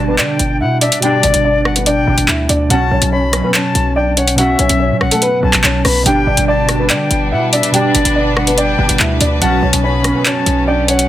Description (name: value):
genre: hip hop, drill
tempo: 143 BPM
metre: 4/4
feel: half-time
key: unclear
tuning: A4 = 440 Hz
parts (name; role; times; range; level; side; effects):
- dark grand piano; melody; 0.0-11.1 s; A3 to G5; -17 LUFS; equal; low-pass filter
- bright reedy jazz flute; second line; 0.0-11.1 s; D5 to B5; -20 LUFS; left 4 dB; digital delay
- warbly lo-fi synth keys; accompaniment; 0.0-11.1 s; B2 to D4; -18 LUFS; right 1 dB; chorus, low-pass filter
- hard-hitting 808-style bass; bass; 0.0-11.1 s; G1 to D3; -18 LUFS; equal; none
- drill drum kit; drums; 0.2-11.1 s; handclaps, hi-hat, rim click; -15 LUFS; equal; none
- warm studio string section; sustained chords; 6.1-11.1 s; F#3 to B4; -22 LUFS; equal; none
room: light reverb, small room ambience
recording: dense, heavily limited modern master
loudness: -11 LUFS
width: side -13 dB against mid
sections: 0.0-11.1 A section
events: none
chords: 0.0 G; 2.7 Bsus2; 6.1 G; 9.4 Bsus2